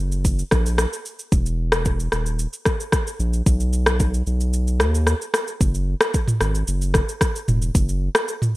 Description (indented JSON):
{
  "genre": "afrobeats",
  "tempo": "112 BPM",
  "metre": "4/4",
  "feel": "straight",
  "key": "unclear",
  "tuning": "A4 = 440 Hz",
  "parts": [
    { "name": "saturated sub bass", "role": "bass", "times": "0.0-8.1 s", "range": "D#1 to D#2", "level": "-21 LUFS", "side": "equal", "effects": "none" },
    { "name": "afro-pop drum kit", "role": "drums", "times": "0.1-8.5 s", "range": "kick drum, rim click, shaker, toms", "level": "-20 LUFS", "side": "equal", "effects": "gated reverb" }
  ],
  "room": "digital ambience",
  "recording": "bright 1980s-style digital production",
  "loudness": "-19 LUFS",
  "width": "side -19 dB against mid",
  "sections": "0.0-5.6 A section; 5.6-8.6 B section",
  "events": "kick muted 4.5-5.6",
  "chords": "none"
}